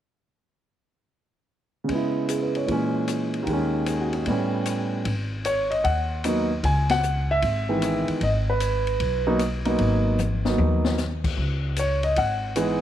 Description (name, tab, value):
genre	jazz piano trio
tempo	152 BPM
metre	4/4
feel	swing 66% on 8ths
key	G# minor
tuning	A4 = 440 Hz
part	warm grand piano	melody	1.8-12.8 s	D#2 to G#5	-23 LUFS	right 1 dB	none
part	open jazz drum kit	drums	1.9-12.7 s	crash cymbal, hi-hat, kick drum, ride cymbal, rim click, snare drum, toms	-32 LUFS	left 4 dB	none
part	upright bass	bass	5.1-12.8 s	G#1 to D#2	-25 LUFS	equal	none
room	light reverb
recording	1960s-style stereo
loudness	-22 LUFS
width	side -11 dB against mid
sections	1.9-5.1 A section; 5.1-12.8 B section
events	band accent 6.8; drum fill 10.2-11.0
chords	1.9 C#m7; 2.7 A#m7b5; 3.5 D#7sus4; 4.3 A9; 5.1 G#7(no3); 6.6 C#m7; 8.2 G#m7; 11.4 C#5